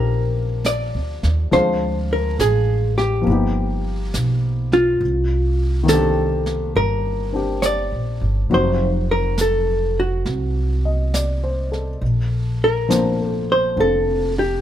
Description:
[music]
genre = jazz ballad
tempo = 69 BPM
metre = 4/4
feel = swing 67% on 8ths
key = Bb major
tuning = A4 = 441 Hz
[part]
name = hollow-body jazz guitar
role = melody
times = 0.0-14.6 s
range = F4 to D5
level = -20 LUFS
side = equal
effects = none
[part]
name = dark baby grand piano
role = accompaniment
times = 0.0-14.6 s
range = Eb3 to Eb5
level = -24 LUFS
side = left 3 dB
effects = none
[part]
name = upright bass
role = bass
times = 0.0-14.6 s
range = F1 to Eb2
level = -21 LUFS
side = equal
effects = none
[part]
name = jazz brush drum kit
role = drums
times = 0.6-14.6 s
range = brushed snare drum, hi-hat, snare drum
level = -29 LUFS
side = right 2 dB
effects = none
[sound]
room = light reverb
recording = close, detailed microphones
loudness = -17 LUFS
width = side -11 dB against mid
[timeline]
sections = 0.0-14.6 A section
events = none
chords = 0.0 Bb69; 1.5 Dm7b5; 3.3 G7alt; 5.0 Cm9; 8.5 F5; 12.0 Bbmaj9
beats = 0.65 | 1.52 2.39 3.27 4.14 | 5.01 5.88 6.75 7.63 | 8.50 9.37 10.25 11.13 | 12.02 12.90 13.78

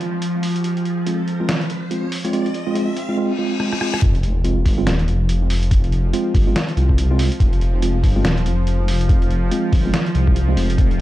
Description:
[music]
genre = deep dubstep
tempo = 142 BPM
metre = 4/4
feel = swing 60% on 16ths, half-time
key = F minor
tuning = A4 = 440 Hz
[part]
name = bowed-like drone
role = sustained chords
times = 0.0-11.0 s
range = F3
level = -26 LUFS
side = equal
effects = built-in reverb, phaser, vintage 12-bit sampler grit
[part]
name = trip hop sampler-style drum kit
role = drums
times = 0.0-11.0 s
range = hi-hat, rim click, snare drum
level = -26 LUFS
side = equal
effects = none
[part]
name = riser, reverse cymbal and sub drop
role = sound effects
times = 0.1-5.7 s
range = none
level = -30 LUFS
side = left 2 dB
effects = none
[part]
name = mellow tine electric piano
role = stabs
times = 1.1-10.7 s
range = Ab3 to F4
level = -24 LUFS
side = right 2 dB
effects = medium stereo tremolo, dub echo
[part]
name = dark detuned saw bass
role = bass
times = 4.0-11.0 s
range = Eb1 to C2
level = -18 LUFS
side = equal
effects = none
[part]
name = electronic kick drum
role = drums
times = 4.0-10.9 s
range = none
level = -16 LUFS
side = equal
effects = none
[sound]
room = light reverb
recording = dark, warm production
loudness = -16 LUFS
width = side -15 dB against mid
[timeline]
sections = 0.0-4.0 A section; 4.0-11.0 B section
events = build-up 0.0-4.0; riser 0.1-3.2; reverse cymbal 3.2-4.0; drum fill 3.6-4.0; drop 4.0-11.0; impact 4.0-5.7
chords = 0.0 Fm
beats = 0.22 | 0.64 1.06 1.49 1.91 | 2.33 2.75 3.18 3.60 | 4.02 4.44 4.87 5.29 | 5.71 6.13 6.56 6.98 | 7.40 7.83 8.25 8.67 | 9.09 9.52 9.94 10.36 | 10.78

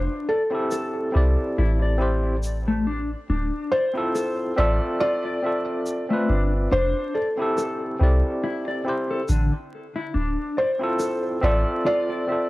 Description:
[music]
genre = trip hop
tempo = 70 BPM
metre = 4/4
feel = swing 56% on 16ths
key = D minor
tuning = A4 = 440 Hz
[part]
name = mellow electric guitar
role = arpeggios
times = 0.0-12.5 s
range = D3 to D5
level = -29 LUFS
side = left 2 dB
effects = harmonic tremolo, tape echo
[part]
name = soft 808-style bass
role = bass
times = 0.0-11.6 s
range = D1 to C2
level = -21 LUFS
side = equal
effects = tube saturation
[part]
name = felt-muted upright piano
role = melody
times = 0.3-12.5 s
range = A4 to D5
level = -26 LUFS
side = equal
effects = tape echo
[part]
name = overdriven tine electric piano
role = accompaniment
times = 0.5-12.5 s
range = C4 to E5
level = -26 LUFS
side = equal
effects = tremolo, tape echo
[part]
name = egg shaker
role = percussion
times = 0.7-11.2 s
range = none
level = -41 LUFS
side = left 1 dB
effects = none
[sound]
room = light reverb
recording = worn, warbling old tape, cassette tape, vinyl crackle, warbly pitch drift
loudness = -21 LUFS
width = side -19 dB against mid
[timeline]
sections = 0.0-12.5 A section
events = none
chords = 0.0 Fmaj7 (rootless); 1.6 Am7; 3.3 Dm7; 6.7 Fmaj7; 8.4 Am7; 10.1 Dm7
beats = 0.72 1.58 2.43 | 3.29 4.15 5.00 5.86 | 6.72 7.58 8.43 9.29 | 10.15 11.01 11.86

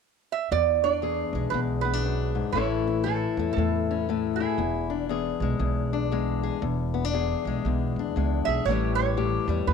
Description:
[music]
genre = acoustic country blues, solo or duo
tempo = 118 BPM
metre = 4/4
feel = swing 62% on 8ths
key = E mixolydian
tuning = A4 = 440 Hz
[part]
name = lap resonator guitar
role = melody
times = 0.3-4.8, 8.4-9.7 s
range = G#4 to E5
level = -28 LUFS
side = right 14 dB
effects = none
[part]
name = fingerpicked old ladder-braced acoustic guitar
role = accompaniment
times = 0.5-9.7 s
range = E2 to G#4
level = -27 LUFS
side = left 10 dB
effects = none
[part]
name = upright bass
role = bass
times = 0.5-9.7 s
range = E1 to E2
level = -28 LUFS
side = right 2 dB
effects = none
[sound]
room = light reverb, small room ambience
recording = 1960s-style stereo with parts hard left and right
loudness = -24 LUFS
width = side -6 dB against mid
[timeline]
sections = 0.5-9.7 A section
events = none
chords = 0.0 N.C.; 0.5 E7; 2.6 A; 4.6 E7; 8.7 A7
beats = 0.01 | 0.52 1.03 1.54 2.04 | 2.56 3.06 3.57 4.08 | 4.59 5.10 5.61 6.12 | 6.63 7.14 7.64 8.15 | 8.66 9.17 9.68

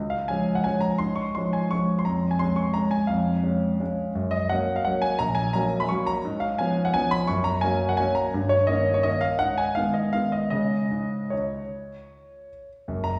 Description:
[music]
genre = classical, piano waltz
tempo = 144-183 BPM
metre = 3/4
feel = rubato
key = Db major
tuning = A4 = 441 Hz
[part]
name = clear concert grand piano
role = solo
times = 0.0-13.2 s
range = F#1 to Db6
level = -25 LUFS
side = equal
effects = none
[sound]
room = wet recital hall reverb, RT60 1.6 s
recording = heard from further back in the room, small room ambience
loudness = -25 LUFS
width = mono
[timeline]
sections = 0.0-12.9 A section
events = none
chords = 0.0 Db; 2.1 Db/F; 4.2 F#; 5.2 F#/A#; 6.2 C#7/G#; 7.3 F#; 8.3 D#7/G; 9.4 G#m; 10.5 C#5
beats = 0.30 0.66 | 1.01 1.36 1.72 | 2.07 2.41 2.76 | 3.10 3.44 3.80 | 4.16 4.50 4.86 | 5.20 5.54 5.89 | 6.24 6.59 6.95 | 7.29 7.64 8.00 | 8.35 8.69 9.05 | 9.41 9.77 10.14 | 10.52 10.91 11.32 | 11.71 12.09 12.48 | 12.86

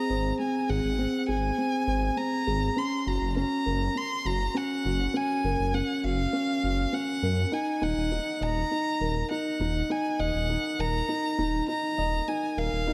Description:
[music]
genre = piano and strings electronica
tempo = 101 BPM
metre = 4/4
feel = straight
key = Eb dorian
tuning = A4 = 438 Hz
[part]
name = clear violin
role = melody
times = 0.0-12.9 s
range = F5 to C6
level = -33 LUFS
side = equal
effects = none
[part]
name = felt-muted upright piano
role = riff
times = 0.0-12.9 s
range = C4 to Eb5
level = -31 LUFS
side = equal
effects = none
[part]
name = dark detuned saw bass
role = bass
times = 0.1-12.9 s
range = Eb1 to Gb2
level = -32 LUFS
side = equal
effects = tube saturation
[sound]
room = light reverb, small room ambience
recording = none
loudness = -28 LUFS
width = mono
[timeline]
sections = 0.0-12.9 A section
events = none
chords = 0.0 Ab; 2.8 Gb; 7.5 Ebm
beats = | 0.40 0.99 1.58 2.18 | 2.77 3.37 3.96 4.55 | 5.15 5.74 6.33 6.93 | 7.52 8.12 8.71 9.31 | 9.90 10.49 11.09 11.68 | 12.28 12.87

